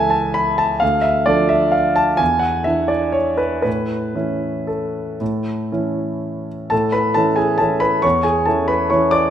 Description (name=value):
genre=classical, piano waltz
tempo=113-145 BPM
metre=3/4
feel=rubato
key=A major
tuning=A4 = 440 Hz
part: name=warm grand piano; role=solo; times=0.0-9.3 s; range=C#2 to D6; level=-16 LUFS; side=equal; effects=none
room=moderate recital hall reverb, RT60 1.4 s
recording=none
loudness=-16 LUFS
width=side -10 dB against mid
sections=0.0-6.7 A section; 6.7-9.3 B section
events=none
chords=0.0 A/C#; 0.8 Dm; 2.2 E13; 3.7 A